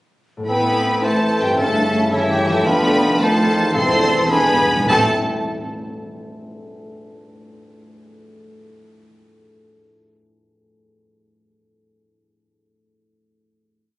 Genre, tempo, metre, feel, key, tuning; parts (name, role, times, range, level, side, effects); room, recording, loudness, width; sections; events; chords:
classical, dramatic, fast romantic movement for symphony orchestra; 101-112 BPM (dotted quarters); 6/8; straight; A minor; A4 = 438 Hz
concert harp; arpeggios; 0.4-5.1 s; E2 to E5; -26 LUFS; left 2 dB
rich studio violin section; melody; 0.5-5.1 s; E5 to C6; -22 LUFS; equal
concert flute; second line; 0.5-5.1 s; C#5 to A5; -23 LUFS; equal
mellow clarinet; second line; 0.5-5.1 s; C4 to E4; -27 LUFS; equal
mellow cor anglais; second line; 0.5-5.1 s; F4 to C5; -24 LUFS; equal
rich symphonic violin section; second line; 0.5-5.1 s; E4 to C5; -25 LUFS; left 1 dB
dark bassoon; accompaniment; 0.5-5.1 s; C#3 to E3; -27 LUFS; right 1 dB
rich symphonic viola section; accompaniment; 0.5-5.1 s; C4 to A4; -29 LUFS; right 1 dB
warm French horn section; sustained chords; 0.5-5.1 s; G#3 to E4; -28 LUFS; left 1 dB
rich studio cello section; bass; 0.5-5.1 s; E3 to C4; -23 LUFS; right 1 dB
rich symphonic double bass section; bass; 0.5-5.1 s; E1 to A1; -31 LUFS; right 1 dB
timpani; percussion; 3.7-5.1 s; E2 to A2; -28 LUFS; equal
wet scoring stage reverb, RT60 1.6 s; recorded on a phone in the room, studio reverb, compression, nothing above 11.0 kHz; -15 LUFS; side -18 dB against mid
0.5-4.9 A section; 4.9-6.1 final chord
slowing down 2.1-4.9; timpani fill 4.3-4.9
0.5 Am; 1.6 A7/G; 2.7 Dm/F; 3.2 F7; 3.8 Am/E; 4.3 E7; 4.9 Am